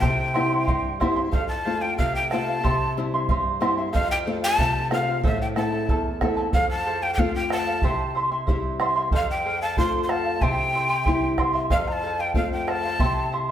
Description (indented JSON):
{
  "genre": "andean folk, Andean ensemble",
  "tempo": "92 BPM",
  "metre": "2/4",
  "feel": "straight",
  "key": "unclear",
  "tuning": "A4 = 439 Hz",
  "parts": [
    { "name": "breathy quena", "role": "melody", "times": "0.0-13.3 s", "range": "E5 to C6", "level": "-25 LUFS", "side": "left 1 dB", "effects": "none" },
    { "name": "charango", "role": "accompaniment", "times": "0.0-13.5 s", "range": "E4 to C6", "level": "-27 LUFS", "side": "right 2 dB", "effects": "none" },
    { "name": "nylon-string guitar", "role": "accompaniment", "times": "0.0-13.5 s", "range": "E2 to F4", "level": "-27 LUFS", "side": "left 3 dB", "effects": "none" },
    { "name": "bombo", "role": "percussion", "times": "0.0-13.1 s", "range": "none", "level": "-26 LUFS", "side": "right 1 dB", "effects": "none" }
  ],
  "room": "wet stone room reverb, RT60 1.2 s",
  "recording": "band playing live in one room",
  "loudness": "-21 LUFS",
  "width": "side -10 dB against mid",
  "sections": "0.0-6.5 A section; 6.5-13.5 A section",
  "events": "none",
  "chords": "0.0 C; 1.3 F; 2.6 C; 3.9 F; 5.2 Am; 6.5 F; 7.8 C; 9.1 F; 10.4 C; 11.7 F; 13.0 C"
}